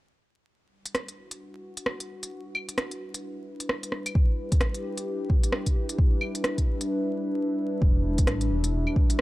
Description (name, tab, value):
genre	future garage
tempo	131 BPM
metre	4/4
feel	swing 61% on 16ths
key	E minor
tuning	A4 = 439 Hz
part	warbly tape-like pad	sustained chords	1.4-9.2 s	G3 to B4	-31 LUFS	left 1 dB	chorus, built-in reverb, sidechain pumping
part	organic electronic drum kit	drums	0.9-9.2 s	claves, hi-hat, rim click	-29 LUFS	equal	none
part	electronic kick drum	drums	4.2-9.1 s	none	-22 LUFS	equal	none
part	dark detuned saw bass	bass	7.8-8.9 s	E1 to A1	-27 LUFS	equal	transformer saturation, sidechain pumping
room	little or no reverb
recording	dry, gritty hardware recording, vinyl crackle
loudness	-24 LUFS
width	side -18 dB against mid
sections	0.5-7.8 A section; 7.8-9.2 B section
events	break 6.9-7.8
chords	0.5 Em9